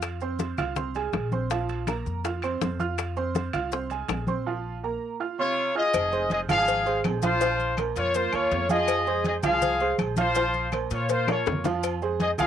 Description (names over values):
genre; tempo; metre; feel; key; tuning
latin, salsa; 163 BPM; 4/4; straight; F minor; A4 = 440 Hz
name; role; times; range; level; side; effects
bright upright piano; accompaniment; 0.0-12.5 s; C3 to F6; -29 LUFS; right 7 dB; cassette tape
upright bass; bass; 0.0-12.5 s; F1 to Bb2; -32 LUFS; left 1 dB; none
bongos and cowbell; percussion; 0.0-12.4 s; none; -31 LUFS; left 12 dB; none
claves; percussion; 0.0-12.5 s; none; -38 LUFS; left 13 dB; none
congas; percussion; 0.0-12.5 s; none; -31 LUFS; left 2 dB; none
maracas; percussion; 0.0-12.5 s; none; -43 LUFS; left 14 dB; none
timbales and agogo bells; percussion; 0.0-12.5 s; none; -40 LUFS; right 9 dB; none
clear trumpet section; melody; 5.4-12.5 s; F4 to F5; -24 LUFS; left 2 dB; cassette tape
room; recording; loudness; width
moderate booth ambience, RT60 0.2 s; home recording on cassette; -24 LUFS; side -9 dB against mid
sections
0.0-5.9 A section; 5.9-12.5 B section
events
drum fill 11.3-11.8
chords
0.0 Fm; 1.5 Bbsus2; 3.0 Fm; 4.5 Bbmadd9; 5.9 Fm7; 7.4 Bbmadd9; 8.9 Fm7; 10.4 Bbmadd9; 11.8 Fm